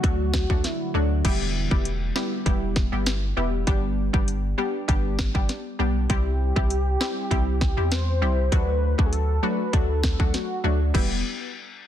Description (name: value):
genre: dancehall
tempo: 99 BPM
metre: 4/4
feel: straight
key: E minor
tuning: A4 = 440 Hz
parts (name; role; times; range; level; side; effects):
- warm velvety synth lead; second line; 0.0-1.2, 6.1-11.2 s; B3 to C5; -30 LUFS; left 1 dB; chorus, ping-pong delay
- analog pluck; accompaniment; 0.0-11.2 s; F#3 to G4; -28 LUFS; left 1 dB; chorus, sidechain pumping
- deep dark ambient pad; sustained chords; 0.0-1.2 s; D3 to F#4; -35 LUFS; right 1 dB; chorus, built-in reverb, sidechain pumping
- punchy sub bass; bass; 0.0-11.2 s; E1 to E2; -25 LUFS; equal; none
- island pop drum kit; drums; 0.0-11.1 s; crash cymbal, hi-hat, kick drum, snare drum; -24 LUFS; equal; overdrive, vintage 12-bit sampler grit
room: digital ambience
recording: dense, heavily limited modern master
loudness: -21 LUFS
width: side -10 dB against mid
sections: 0.0-1.2 A section; 1.2-10.9 B section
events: none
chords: 0.0 D; 1.2 Em; 3.7 G; 6.1 C; 8.5 D; 10.9 Em